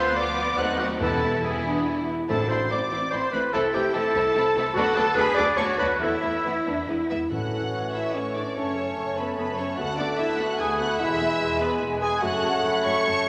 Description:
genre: classical, dramatic, fast romantic movement for symphony orchestra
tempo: 146 BPM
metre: 3/4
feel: rubato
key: A minor, A major from 4.8 s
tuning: A4 = 440 Hz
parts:
  - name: warm symphonic violin section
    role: melody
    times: 0.0-13.3 s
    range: E5 to C#7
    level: -35 LUFS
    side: equal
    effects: none
  - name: bright flute section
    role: second line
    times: 0.0-13.3 s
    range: E4 to C#6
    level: -37 LUFS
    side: equal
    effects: none
  - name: mellow clarinet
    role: second line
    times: 0.0-13.3 s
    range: B3 to F#5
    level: -31 LUFS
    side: equal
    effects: none
  - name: warm oboe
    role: second line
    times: 0.0-13.3 s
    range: E4 to F#5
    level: -34 LUFS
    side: equal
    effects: none
  - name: warm symphonic violin section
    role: second line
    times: 0.0-13.3 s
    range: B3 to C#6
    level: -32 LUFS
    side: equal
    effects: none
  - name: rich symphonic viola section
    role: accompaniment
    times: 0.0-13.3 s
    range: E3 to A4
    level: -39 LUFS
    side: equal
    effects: none
  - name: rich studio double bass section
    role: bass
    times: 0.0-13.2 s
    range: E1 to E2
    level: -41 LUFS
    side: equal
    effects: none
  - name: warm symphonic cello section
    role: bass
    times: 0.0-13.1 s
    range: D2 to A4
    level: -35 LUFS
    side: equal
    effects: none
  - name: warm French horn section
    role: sustained chords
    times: 0.6-13.3 s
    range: A3 to B#4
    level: -33 LUFS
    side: equal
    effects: none
  - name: timpani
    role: percussion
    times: 1.0-2.9, 7.3-7.9 s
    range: E2 to A2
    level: -34 LUFS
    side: equal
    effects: none
  - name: mellow bassoon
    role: accompaniment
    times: 7.3-13.3 s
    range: E3 to A3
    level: -33 LUFS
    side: equal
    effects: none
room: wet scoring stage reverb, RT60 1.9 s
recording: none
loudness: -25 LUFS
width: mono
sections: 0.0-7.3 A section; 7.3-13.3 B section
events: none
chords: 0.0 Bdim/D; 0.6 D#dim7; 1.0 E; 2.3 Am; 3.5 Am/C; 4.8 Bm7/D; 6.0 Esus4; 6.9 E; 7.3 A; 8.6 F#m; 9.8 Bm7/D; 11.0 E; 12.2 F#m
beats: 0.17 0.59 | 1.01 1.44 1.87 | 2.29 2.70 3.12 | 3.53 3.94 4.35 | 4.76 5.16 5.58 | 6.01 6.45 6.89 | 7.32 7.74 8.16 | 8.57 8.98 9.39 | 9.79 10.20 10.61 | 11.01 11.41 11.82 | 12.23 12.64 13.07

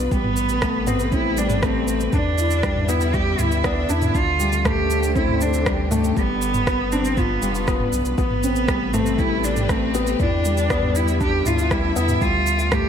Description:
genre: piano and strings electronica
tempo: 119 BPM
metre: 4/4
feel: straight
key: A minor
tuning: A4 = 442 Hz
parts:
  - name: clear studio string section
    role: sustained chords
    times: 0.0-12.9 s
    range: C3 to E5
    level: -30 LUFS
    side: left 1 dB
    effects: shimmer reverb
  - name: felt-muted upright piano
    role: riff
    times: 0.0-12.9 s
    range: G3 to F4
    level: -24 LUFS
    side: left 4 dB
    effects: digital delay, shimmer reverb
  - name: warm sub bass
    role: bass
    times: 0.0-12.9 s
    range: F1 to E2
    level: -25 LUFS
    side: equal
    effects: sidechain pumping
  - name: clear cello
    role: melody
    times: 0.1-12.9 s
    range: B3 to G4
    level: -23 LUFS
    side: right 2 dB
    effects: shimmer reverb
  - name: electronic kick drum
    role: drums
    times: 0.1-12.8 s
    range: none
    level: -25 LUFS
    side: equal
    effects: none
  - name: organic electronic drum kit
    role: drums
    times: 0.1-12.8 s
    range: rim click, shaker, toms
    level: -27 LUFS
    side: right 1 dB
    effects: none
room: moderate scoring stage reverb, RT60 1.5 s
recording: none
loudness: -18 LUFS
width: side -8 dB against mid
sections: 0.0-12.9 A section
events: none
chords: 0.1 Am9; 2.1 Em7; 4.1 D7sus4; 6.2 G7; 8.2 Am9; 10.2 Em7; 12.2 Dsus4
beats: | 0.11 0.62 1.12 1.63 | 2.13 2.63 3.14 3.64 | 4.15 4.65 5.16 5.66 | 6.16 6.67 7.17 7.68 | 8.18 8.69 9.19 9.69 | 10.20 10.70 11.21 11.71 | 12.21 12.72

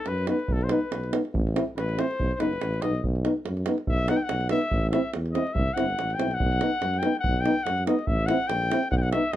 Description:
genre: balkan folk, Balkan brass band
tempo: 142 BPM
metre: 2/4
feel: swing 56% on 16ths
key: B phrygian dominant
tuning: A4 = 440 Hz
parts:
  - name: warm trumpet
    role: second line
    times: 0.0-9.4 s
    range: A4 to G5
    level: -29 LUFS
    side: left 2 dB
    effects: none
  - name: mellow tuba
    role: bass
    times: 0.1-9.4 s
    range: F#1 to F#2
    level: -28 LUFS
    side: equal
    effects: none
  - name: davul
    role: percussion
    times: 0.1-9.4 s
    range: none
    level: -31 LUFS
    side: right 2 dB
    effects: none
  - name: mellow trombone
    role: accompaniment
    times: 0.3-9.2 s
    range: D#4 to E4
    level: -28 LUFS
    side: left 4 dB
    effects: none
  - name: warm euphonium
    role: accompaniment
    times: 0.3-9.2 s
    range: B3 to C4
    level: -30 LUFS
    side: right 6 dB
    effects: none
room: light reverb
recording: none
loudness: -23 LUFS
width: side -13 dB against mid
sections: 0.0-9.4 A section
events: trumpet solo 0.0-9.4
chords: 0.0 B; 1.4 Am; 2.2 B; 4.7 Am; 5.6 C; 6.4 B; 8.1 Am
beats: 0.08 | 0.51 0.93 | 1.35 1.77 | 2.20 2.62 | 3.04 3.46 | 3.88 4.31 | 4.73 5.15 | 5.57 5.99 | 6.41 6.83 | 7.25 7.67 | 8.09 8.51 | 8.93 9.35

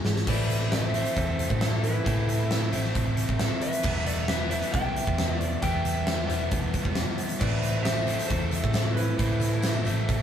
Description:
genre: classic rock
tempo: 134 BPM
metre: 4/4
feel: straight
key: A minor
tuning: A4 = 440 Hz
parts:
  - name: overdriven electric guitar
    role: riff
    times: 0.0-10.2 s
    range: A2 to E4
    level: -30 LUFS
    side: equal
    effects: none
  - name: hollow-body short-scale picked electric bass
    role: bass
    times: 0.0-10.2 s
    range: E1 to A2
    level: -28 LUFS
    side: equal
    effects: none
  - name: huge arena drum kit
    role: drums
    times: 0.0-10.2 s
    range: crash cymbal, hi-hat, kick drum, snare drum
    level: -28 LUFS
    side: equal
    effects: none
  - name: electric slide guitar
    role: melody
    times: 0.3-9.8 s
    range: B4 to G5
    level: -34 LUFS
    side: left 1 dB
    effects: none
  - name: bluesy overdriven lead guitar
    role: second line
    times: 0.3-9.8 s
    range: E4 to E5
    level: -36 LUFS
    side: right 2 dB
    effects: distortion
  - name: tambourine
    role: percussion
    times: 7.4-10.2 s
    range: none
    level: -47 LUFS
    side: left 6 dB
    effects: none
room: light reverb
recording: band playing live in one room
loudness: -24 LUFS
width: side -9 dB against mid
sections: 0.3-10.2 A section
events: drum fill 0.0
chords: 0.3 Amadd9; 3.8 Em; 7.4 Amadd9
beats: | 0.27 0.71 1.16 1.61 | 2.05 2.50 2.95 3.39 | 3.84 4.28 4.73 5.17 | 5.62 6.07 6.51 6.96 | 7.41 7.85 8.30 8.74 | 9.19 9.64 10.08

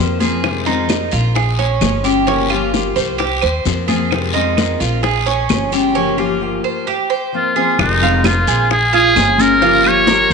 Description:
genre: latin, Cuban son and guajira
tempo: 131 BPM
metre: 4/4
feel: straight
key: F minor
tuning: A4 = 437 Hz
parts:
  - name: fingerpicked steel-string acoustic guitar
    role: accompaniment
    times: 0.0-10.3 s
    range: C3 to G4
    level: -20 LUFS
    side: left 9 dB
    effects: none
  - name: Cuban tres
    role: arpeggios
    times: 0.0-10.3 s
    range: Db4 to F5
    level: -18 LUFS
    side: right 8 dB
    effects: none
  - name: upright bass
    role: bass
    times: 0.0-10.3 s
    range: F1 to F2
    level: -20 LUFS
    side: equal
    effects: none
  - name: congas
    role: percussion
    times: 0.2-10.3 s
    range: none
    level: -23 LUFS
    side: right 2 dB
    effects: none
  - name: guiro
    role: percussion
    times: 0.2-10.3 s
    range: none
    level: -26 LUFS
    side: left 11 dB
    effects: none
  - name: bongos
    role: percussion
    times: 0.4-10.3 s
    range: none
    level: -24 LUFS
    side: left 11 dB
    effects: none
  - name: claves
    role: percussion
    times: 0.4-10.1 s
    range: none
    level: -27 LUFS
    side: right 12 dB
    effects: none
  - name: trumpet with metal mute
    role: melody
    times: 7.4-10.3 s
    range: Eb4 to Db5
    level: -13 LUFS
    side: equal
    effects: none
room: wet echo chamber reverb, RT60 1.7 s, small room ambience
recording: 1960s-style stereo with parts hard left and right, nothing above 10.8 kHz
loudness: -13 LUFS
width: side -5 dB against mid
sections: 0.0-7.8 A section; 7.8-10.3 B section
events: none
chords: 0.4 Fm7; 1.4 Bbm7; 2.3 Gm7b5; 3.2 C7sus4; 4.1 Fm7; 5.0 Bbm7; 6.0 Gm7b5; 6.9 C7sus4; 7.8 Fm7; 8.7 Bbm7; 9.6 Gm7b5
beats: | 0.45 0.90 1.36 1.82 | 2.28 2.74 3.20 3.66 | 4.12 4.58 5.04 5.49 | 5.95 6.41 6.87 7.33 | 7.79 8.25 8.70 9.16 | 9.62 10.08

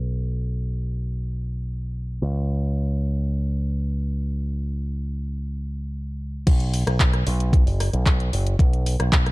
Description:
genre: nu-disco, nu disco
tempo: 113 BPM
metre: 4/4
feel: straight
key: unclear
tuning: A4 = 441 Hz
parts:
  - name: picked electric bass with an envelope filter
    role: bass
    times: 0.0-9.3 s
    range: F#1 to C#2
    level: -23 LUFS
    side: equal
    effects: none
  - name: electronic kick drum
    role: drums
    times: 6.5-9.2 s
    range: none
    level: -18 LUFS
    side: equal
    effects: overdrive
  - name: pop drum kit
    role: drums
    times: 6.5-9.3 s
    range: crash cymbal, handclaps, hi-hat, rim click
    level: -27 LUFS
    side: equal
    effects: overdrive
room: little or no reverb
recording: dark, warm production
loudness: -21 LUFS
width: side -21 dB against mid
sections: 0.0-6.5 A section; 6.5-9.3 B section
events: drop 6.5-9.3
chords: none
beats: | 0.10 0.63 1.16 1.69 | 2.22 2.75 3.29 3.82 | 4.35 4.88 5.41 5.94 | 6.47 7.00 7.53 8.06 | 8.60 9.13

